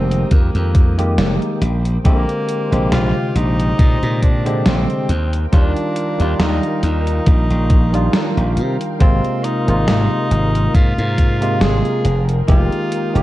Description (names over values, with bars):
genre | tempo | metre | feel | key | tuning
vaporwave | 69 BPM | 4/4 | swing 55% on 16ths | Ab lydian | A4 = 440 Hz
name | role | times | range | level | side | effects
clear tenor saxophone | melody | 0.0-13.2 s | Bb3 to Ab4 | -24 LUFS | equal | tape echo
bell-like tine electric piano | accompaniment | 0.0-13.2 s | C3 to D5 | -21 LUFS | equal | wide subtle chorus, vintage 12-bit sampler grit
soft string machine | sustained chords | 0.0-13.2 s | Bb4 to Eb6 | -31 LUFS | left 1 dB | ensemble chorus, vintage 12-bit sampler grit
glassy slap bass | bass | 0.0-13.2 s | F1 to C3 | -17 LUFS | equal | none
gated 80s digital drum machine | drums | 0.1-13.2 s | hi-hat, snare drum | -22 LUFS | right 1 dB | gated reverb, gated reverb snare
electronic kick drum | drums | 0.3-12.7 s | none | -13 LUFS | equal | none
room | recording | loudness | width
light reverb | dark, warm production, cassette tape | -14 LUFS | side -16 dB against mid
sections
0.0-13.2 A section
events
none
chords
0.0 Fm11; 1.6 Bb13; 5.1 Ebmaj9; 9.0 Ab69; 12.1 Fm11